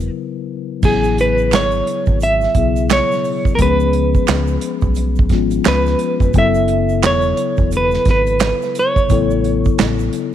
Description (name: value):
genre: R&B, neo-soul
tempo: 87 BPM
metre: 4/4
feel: swing 62% on 16ths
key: A major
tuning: A4 = 442 Hz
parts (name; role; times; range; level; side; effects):
- clean electric guitar; melody; 0.0-10.3 s; G#4 to E5; -18 LUFS; right 2 dB; tremolo, slapback echo
- mellow tine electric piano; accompaniment; 0.0-10.3 s; B2 to B4; -20 LUFS; left 10 dB; medium stereo tremolo
- deep dub fingered electric bass; bass; 0.0-10.1 s; E1 to C#2; -19 LUFS; equal; none
- unplugged drum kit; drums; 0.0-10.3 s; crash cymbal, handclaps, hi-hat, kick drum, snare drum; -18 LUFS; right 2 dB; none
- tube shaker and finger snaps; percussion; 0.0-10.3 s; none; -34 LUFS; right 13 dB; none
room: light reverb, small room ambience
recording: 1960s-style stereo with parts hard left and right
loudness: -13 LUFS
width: side -10 dB against mid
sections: 0.8-10.3 A section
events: break 0.1-0.8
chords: 0.0 A (rootless); 0.8 Amaj7; 3.6 C#7; 6.3 F#m11; 9.1 A69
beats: 0.14 | 0.83 1.52 2.21 2.90 | 3.59 4.28 4.97 5.66 | 6.35 7.04 7.72 8.41 | 9.11 9.79